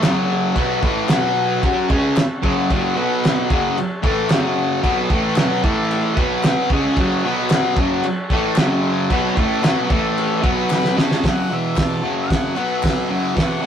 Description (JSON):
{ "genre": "garage rock duo or trio", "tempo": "113 BPM", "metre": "4/4", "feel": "straight", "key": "F# minor", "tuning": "A4 = 440 Hz", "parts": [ { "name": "combo organ", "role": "sustained chords", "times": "0.0-13.7 s", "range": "E4 to C#6", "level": "-32 LUFS", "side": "equal", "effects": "none" }, { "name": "fuzz guitar", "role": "riff", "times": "0.0-13.7 s", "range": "E2 to F#4", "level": "-18 LUFS", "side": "left 1 dB", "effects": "distortion" }, { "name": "cloth-damped thuddy drum kit", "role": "drums", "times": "0.0-13.5 s", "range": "crash cymbal, hi-hat, kick drum, snare drum", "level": "-20 LUFS", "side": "equal", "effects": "none" }, { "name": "group handclap", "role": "percussion", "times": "0.0-12.9 s", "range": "none", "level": "-32 LUFS", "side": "left 3 dB", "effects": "none" }, { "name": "bright harmonica", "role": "melody", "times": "10.8-13.7 s", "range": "E5 to B5", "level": "-29 LUFS", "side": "right 1 dB", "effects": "overdrive" } ], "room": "moderate studio reverb, RT60 0.6 s", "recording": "rough rehearsal-room recording, warm saturation", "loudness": "-16 LUFS", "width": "side -8 dB against mid", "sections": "0.0-11.2 A section; 11.2-13.7 B section", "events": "transistor combo organ fill 10.4-11.2; drum fill 10.7-11.2", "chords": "0.0 F#m; 1.1 B5; 1.6 F#m; 3.0 B5; 3.5 F#m; 5.6 A5; 6.2 B5; 6.7 F#m; 7.2 B5; 7.8 F#m; 9.9 A5; 10.4 B5; 11.0 Amaj7/C#; 11.2 F#5; 11.5 E5; 12.0 F#m; 12.6 B5; 13.1 F#m" }